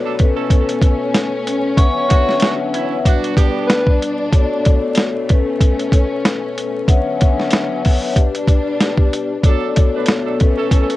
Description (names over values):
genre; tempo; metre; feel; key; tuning
hip hop, boom-bap hip-hop; 94 BPM; 4/4; swing 57% on 16ths; unclear; A4 = 440 Hz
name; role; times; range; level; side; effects
vibraphone with soft mallets; accompaniment; 0.0-11.0 s; G3 to F#5; -20 LUFS; left 5 dB; cassette tape, high-pass filter, low-pass filter
warm studio string section; sustained chords; 0.0-11.0 s; B2 to D4; -23 LUFS; equal; high-pass filter, low-pass filter, cassette tape
warm horn section; stabs; 0.1-3.8, 9.5-11.0 s; D3 to B4; -26 LUFS; right 8 dB; high-pass filter, low-pass filter, cassette tape, tape echo
boom bap sampler-style drum kit; drums; 0.2-11.0 s; hi-hat, kick drum, snare drum; -14 LUFS; equal; cassette tape
breathy tenor saxophone; melody; 1.8-4.0 s; B4 to C#5; -21 LUFS; equal; high-pass filter, low-pass filter, cassette tape, tape echo
room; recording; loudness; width
little or no reverb; home recording on cassette, vinyl crackle, nothing above 10.5 kHz; -13 LUFS; side -16 dB against mid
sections
0.0-11.0 A section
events
none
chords
0.2 Aadd9/B; 1.8 Dmaj7; 3.1 G/B; 4.3 Bm7; 5.3 Aadd9/B; 6.9 Dmaj7; 8.2 G/B; 9.4 Bm7; 10.4 Aadd9/B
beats
0.50 1.14 | 1.77 2.41 3.05 3.69 | 4.33 4.97 5.61 6.24 | 6.88 7.52 8.16 8.80 | 9.44 10.07 10.71